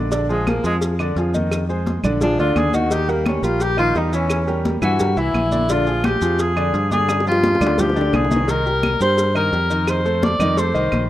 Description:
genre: Afro-Cuban jazz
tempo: 172 BPM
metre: 4/4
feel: straight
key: Bb mixolydian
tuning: A4 = 440 Hz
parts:
  - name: clear concert grand piano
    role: accompaniment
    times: 0.0-11.0 s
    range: D3 to E5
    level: -22 LUFS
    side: equal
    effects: none
  - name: fingered electric bass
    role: bass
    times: 0.0-11.1 s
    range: Bb1 to G2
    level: -22 LUFS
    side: equal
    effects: none
  - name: congas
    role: percussion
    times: 0.1-11.1 s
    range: none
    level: -25 LUFS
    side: left 1 dB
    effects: none
  - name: cowbell and bongos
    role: percussion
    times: 0.1-11.1 s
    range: none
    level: -28 LUFS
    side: left 3 dB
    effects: none
  - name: maracas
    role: percussion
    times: 0.1-11.1 s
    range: none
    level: -36 LUFS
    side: right 1 dB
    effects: none
  - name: clear tenor saxophone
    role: melody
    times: 0.3-11.1 s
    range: Ab3 to D5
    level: -20 LUFS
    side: equal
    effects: none
  - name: claves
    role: percussion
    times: 0.5-11.1 s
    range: none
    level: -32 LUFS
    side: right 3 dB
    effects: none
room: light reverb, small room ambience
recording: rough home demo mix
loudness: -16 LUFS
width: side -14 dB against mid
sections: 0.0-11.1 A section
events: tenor saxophone solo 0.0-11.1; drum fill 7.1-8.5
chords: 0.1 Bb7; 1.5 Fm7; 2.2 Bb7; 2.9 Eb; 4.3 Edim7; 5.7 Bb7; 7.1 G5; 8.5 Cm7; 9.9 F7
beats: | 0.12 0.47 0.82 1.17 | 1.51 1.86 2.21 2.56 | 2.91 3.26 3.60 3.95 | 4.30 4.65 5.00 5.35 | 5.70 6.04 6.39 6.74 | 7.09 7.44 7.79 8.13 | 8.48 8.83 9.18 9.53 | 9.88 10.22 10.57 10.92

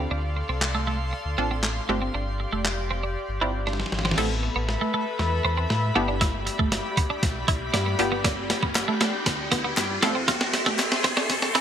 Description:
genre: dance-pop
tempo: 118 BPM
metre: 4/4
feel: straight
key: A minor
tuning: A4 = 436 Hz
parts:
  - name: wide unison pluck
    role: accompaniment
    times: 0.0-10.9 s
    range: B3 to A4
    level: -29 LUFS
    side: left 1 dB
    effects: analog chorus, sidechain pumping
  - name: airy breathy pad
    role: sustained chords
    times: 0.0-11.6 s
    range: G4 to C6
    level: -31 LUFS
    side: left 2 dB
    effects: chorus, sidechain pumping
  - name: twelve-string electric guitar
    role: riff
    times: 0.0-11.6 s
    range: A3 to F4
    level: -28 LUFS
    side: right 4 dB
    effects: wide subtle chorus
  - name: sub bass with octave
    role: bass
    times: 0.0-11.6 s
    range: F1 to A2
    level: -29 LUFS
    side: equal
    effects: sidechain pumping
  - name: boom bap sampler-style drum kit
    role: drums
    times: 0.6-11.6 s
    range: crash cymbal, handclaps, hi-hat, kick drum, snare drum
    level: -26 LUFS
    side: equal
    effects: gated reverb
  - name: riser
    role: sound effects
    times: 6.4-11.6 s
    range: none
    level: -32 LUFS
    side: equal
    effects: none
  - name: group handclap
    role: percussion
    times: 8.8-10.9 s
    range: none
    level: -34 LUFS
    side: left 6 dB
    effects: none
room: moderate plate reverb, RT60 1.9 s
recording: bright 1980s-style digital production, high-pass filter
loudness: -22 LUFS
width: side -9 dB against mid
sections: 0.0-4.2 A section; 4.2-11.6 B section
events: drum fill 3.7-4.2, 4.2-11.6; build-up 4.2-11.6; filter sweep 4.2-11.6; riser 6.4-11.6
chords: 0.0 Dm7; 1.9 G7sus4; 4.2 Amadd9; 6.0 Em7/G; 8.0 G7; 10.0 Fmaj7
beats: | 0.11 0.62 1.13 1.64 | 2.15 2.65 3.16 3.67 | 4.18 4.69 5.20 5.70 | 6.21 6.72 7.23 7.74 | 8.25 8.76 9.26 9.77 | 10.28 10.79 11.30

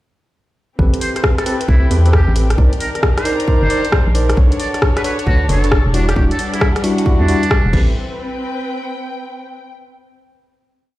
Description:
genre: UK garage, two-step garage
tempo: 134 BPM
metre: 4/4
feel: swing 65% on 16ths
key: A dorian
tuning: A4 = 441 Hz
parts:
  - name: muted studio violin section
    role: sustained chords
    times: 0.8-7.9 s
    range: C4 to C#5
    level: -30 LUFS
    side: right 1 dB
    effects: sidechain pumping
  - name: tine electric piano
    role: stabs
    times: 0.8-7.9 s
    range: G3 to D5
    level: -21 LUFS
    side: equal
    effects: medium stereo tremolo, low-pass filter, digital delay
  - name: organ-like FM bass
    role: bass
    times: 0.8-7.9 s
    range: E1 to E2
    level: -14 LUFS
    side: equal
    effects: none
  - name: electronic kick drum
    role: drums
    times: 0.8-7.8 s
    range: none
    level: -15 LUFS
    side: equal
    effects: none
  - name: muted studio string section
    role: texture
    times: 0.8-9.7 s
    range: Eb3 to Bb5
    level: -26 LUFS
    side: left 2 dB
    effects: sidechain pumping
  - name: garage drum kit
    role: drums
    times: 0.9-7.8 s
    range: crash cymbal, hi-hat, rim click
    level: -21 LUFS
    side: left 1 dB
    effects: none
  - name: trumpet with metal mute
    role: melody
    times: 1.0-7.8 s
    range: D4 to D5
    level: -24 LUFS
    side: right 1 dB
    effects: digital delay
room: small room ambience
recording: played on a big sound system in a bare room, large studio reverb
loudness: -13 LUFS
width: side -16 dB against mid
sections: 0.8-8.0 groove; 8.0-9.7 final note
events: none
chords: 0.8 Am9; 2.6 Cm9; 4.4 Bm9; 5.9 Em9; 7.7 Am9; 8.0 Gadd11/C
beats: | 0.79 1.24 1.69 2.13 | 2.58 3.03 3.48 3.92 | 4.37 4.82 5.27 5.71 | 6.16 6.61 7.06 7.51 | 7.95 8.40 8.85 9.30

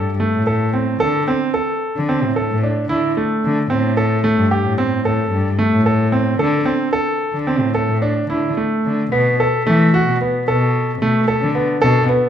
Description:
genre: contemporary instrumental, chamber music in an uneven meter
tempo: 111 BPM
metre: 5/4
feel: straight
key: unclear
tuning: A4 = 440 Hz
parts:
  - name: bright grand piano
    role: arpeggios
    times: 0.0-12.3 s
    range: A3 to A4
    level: -17 LUFS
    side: right 1 dB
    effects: none
  - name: warm cello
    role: bass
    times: 0.0-12.0 s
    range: G2 to E3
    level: -19 LUFS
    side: left 1 dB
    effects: none
  - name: crotales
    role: texture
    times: 9.1-10.8 s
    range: B6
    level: -27 LUFS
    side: left 1 dB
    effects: none
room: wet recital hall reverb, RT60 1.3 s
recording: none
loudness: -15 LUFS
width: side -9 dB against mid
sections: 0.0-9.1 A section; 9.1-12.3 B section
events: none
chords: 0.0 Am7; 1.0 D5; 3.7 Am7; 6.4 D5; 9.1 B7(no3)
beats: 0.47 | 1.01 1.55 2.09 2.62 3.16 | 3.69 4.23 4.77 5.31 5.85 | 6.39 6.93 7.47 8.02 8.57 | 9.12 9.67 10.21 10.75 11.28 | 11.82

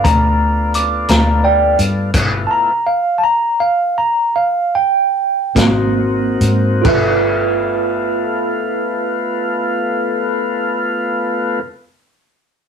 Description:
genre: slow blues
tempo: 44-58 BPM (dotted quarters)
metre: 12/8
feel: straight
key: G mixolydian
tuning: A4 = 440 Hz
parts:
  - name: tine electric piano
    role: accompaniment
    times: 0.0-11.6 s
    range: Bb3 to D6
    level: -16 LUFS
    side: right 2 dB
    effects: medium stereo tremolo
  - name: tonewheel organ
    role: sustained chords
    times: 0.0-11.6 s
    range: A3 to Gb4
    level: -20 LUFS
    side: left 2 dB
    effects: slow rotary speaker
  - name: vintage muted fingered electric bass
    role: bass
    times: 0.0-11.6 s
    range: G1 to Ab2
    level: -17 LUFS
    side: left 1 dB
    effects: none
  - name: vintage drum kit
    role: drums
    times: 0.0-7.1 s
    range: crash cymbal, hi-hat, kick drum, snare drum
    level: -18 LUFS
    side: left 1 dB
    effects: none
room: moderate studio reverb, RT60 0.5 s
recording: rough rehearsal-room recording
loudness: -13 LUFS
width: side -7 dB against mid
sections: 0.0-6.9 A section; 6.9-12.2 B section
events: tine electric piano solo 0.0-6.9; slowing down 0.7-6.9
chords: 0.0 G9; 2.1 G13; 5.6 Ab9; 6.9 G13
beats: 0.04 1.08 | 2.14 3.22 4.36 5.56 | 6.85 8.20 9.54 10.89

